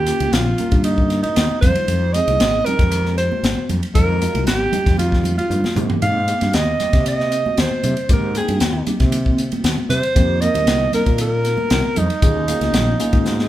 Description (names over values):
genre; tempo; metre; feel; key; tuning
electric jazz fusion; 116 BPM; 4/4; straight; unclear; A4 = 440 Hz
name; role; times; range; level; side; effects
breathy alto saxophone; melody; 0.0-13.5 s; Eb4 to F5; -20 LUFS; right 2 dB; none
tine electric piano; accompaniment; 0.0-13.5 s; Ab3 to G5; -25 LUFS; equal; medium stereo tremolo, phaser
fretless electric bass; bass; 0.0-13.5 s; Ab1 to C3; -21 LUFS; equal; none
crisp fusion drum kit; drums; 0.1-13.5 s; hi-hat, kick drum, ride cymbal, snare drum, toms; -20 LUFS; left 1 dB; none
congas; percussion; 0.2-13.4 s; none; -28 LUFS; right 3 dB; none
room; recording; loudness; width
moderate large studio reverb, RT60 1.1 s; band playing live in one room; -15 LUFS; side -13 dB against mid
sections
0.0-13.5 A section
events
drum fill 5.5-6.0, 13.3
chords
0.0 Eb9; 1.6 Abmaj13; 5.8 Abmaj7; 10.2 F7sus4; 12.2 Eb9sus4